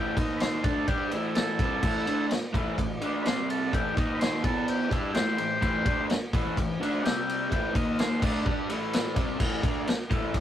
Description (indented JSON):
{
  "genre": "garage rock duo or trio",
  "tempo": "127 BPM",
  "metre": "4/4",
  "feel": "straight",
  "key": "A minor",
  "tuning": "A4 = 440 Hz",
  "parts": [
    { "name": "overdriven combo organ", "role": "melody", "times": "0.0-8.2 s", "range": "D#4 to G5", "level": "-31 LUFS", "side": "equal", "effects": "none" },
    { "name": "raw garage guitar", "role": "riff", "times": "0.0-10.4 s", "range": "A2 to G4", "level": "-29 LUFS", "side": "equal", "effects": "overdrive" },
    { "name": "vintage drum kit", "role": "drums", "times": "0.2-10.4 s", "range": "crash cymbal, kick drum, ride cymbal, snare drum", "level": "-28 LUFS", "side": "equal", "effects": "none" }
  ],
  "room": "moderate small room reverb, RT60 0.6 s",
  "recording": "rough rehearsal-room recording",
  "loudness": "-25 LUFS",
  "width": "side -11 dB against mid",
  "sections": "0.0-9.4 A section; 9.4-10.4 B section",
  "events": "transistor combo organ solo 0.0-9.4",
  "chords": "0.2 D#5; 0.6 Am; 3.3 C5; 3.7 A5; 4.0 D#5; 4.4 E5; 4.9 Am; 7.0 C5; 7.5 A5; 7.7 D#5; 8.2 Am; 9.4 A5"
}